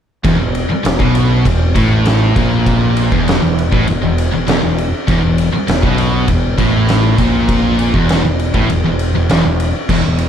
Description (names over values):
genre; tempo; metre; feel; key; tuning
stoner and doom metal; 100 BPM; 4/4; straight; unclear; A4 = 439 Hz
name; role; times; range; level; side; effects
scooped high-gain guitar; riff; 0.2-10.3 s; E2 to B2; -20 LUFS; equal; distortion
thick fuzz guitar; riff; 0.2-10.3 s; E2 to B2; -17 LUFS; left 6 dB; distortion
thick fuzz guitar; riff; 0.2-10.3 s; E2 to B2; -18 LUFS; right 8 dB; distortion
growling fingered electric bass; bass; 0.2-10.3 s; E1 to B1; -19 LUFS; equal; overdrive
oversized low-tuned drum kit; drums; 0.2-10.3 s; crash cymbal, kick drum, ride cymbal, snare drum; -16 LUFS; equal; none
room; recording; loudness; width
studio reverb; dark, warm production; -11 LUFS; side -8 dB against mid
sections
0.3-10.3 A section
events
none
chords
0.3 E5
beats
| 0.25 0.85 1.46 2.06 | 2.67 3.27 3.88 4.48 | 5.08 5.68 6.29 6.89 | 7.49 8.09 8.69 9.29 | 9.89